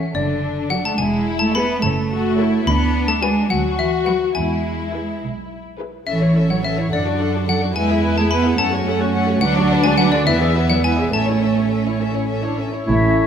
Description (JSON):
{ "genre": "cinematic, playful, whimsical film cue", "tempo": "71 BPM (dotted quarters)", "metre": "6/8", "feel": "straight", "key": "A major", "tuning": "A4 = 440 Hz", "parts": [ { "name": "warm studio violin section", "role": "melody", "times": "0.0-12.9 s", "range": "B4 to G#5", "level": "-28 LUFS", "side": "left 6 dB", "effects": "none" }, { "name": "xylophone with wooden mallets", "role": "melody", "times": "0.0-12.0 s", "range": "D5 to B5", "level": "-24 LUFS", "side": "left 3 dB", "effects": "none" }, { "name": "dark studio violin section", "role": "second line", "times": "0.0-12.7 s", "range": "B3 to F#4", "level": "-23 LUFS", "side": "left 4 dB", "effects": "none" }, { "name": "dark studio viola section", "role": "accompaniment", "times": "0.0-12.9 s", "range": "C#4 to E5", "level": "-26 LUFS", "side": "equal", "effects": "none" }, { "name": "dark studio double bass section", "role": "bass", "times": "0.1-13.3 s", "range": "E1 to F#2", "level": "-23 LUFS", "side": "right 2 dB", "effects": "none" }, { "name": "warm studio cello section", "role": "bass", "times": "0.1-13.3 s", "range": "A2 to B3", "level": "-20 LUFS", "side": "right 3 dB", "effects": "none" }, { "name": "mellow clarinet", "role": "second line", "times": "12.9-13.3 s", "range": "E4", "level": "-18 LUFS", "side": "left 2 dB", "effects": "none" }, { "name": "small flute group", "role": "second line", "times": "12.9-13.3 s", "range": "E5", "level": "-20 LUFS", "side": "left 4 dB", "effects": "none" }, { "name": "warm oboe", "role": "second line", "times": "12.9-13.3 s", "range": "C#5", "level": "-25 LUFS", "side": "left 2 dB", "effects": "none" }, { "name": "mellow bassoon", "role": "accompaniment", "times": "12.9-13.3 s", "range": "A3", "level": "-25 LUFS", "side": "right 4 dB", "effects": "none" }, { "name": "dark French horn section", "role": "sustained chords", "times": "12.9-13.3 s", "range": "A3 to C#4", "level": "-26 LUFS", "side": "left 2 dB", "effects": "none" } ], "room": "wet scoring stage reverb, RT60 1.6 s", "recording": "none", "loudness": "-16 LUFS", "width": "side -8 dB against mid", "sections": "0.0-12.9 A section", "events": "none", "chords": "0.1 D/F#; 1.0 E; 1.8 F#m; 2.7 Bm/D; 4.4 E; 6.1 A; 6.9 D/F#; 7.8 E; 8.6 F#m; 9.4 Bm/D; 10.3 E7; 11.1 A", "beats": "0.14 | 0.99 1.83 | 2.67 3.51 | 4.36 5.21 | 6.07 6.92 | 7.75 8.59 | 9.42 10.27 | 11.13 12.01 | 12.87" }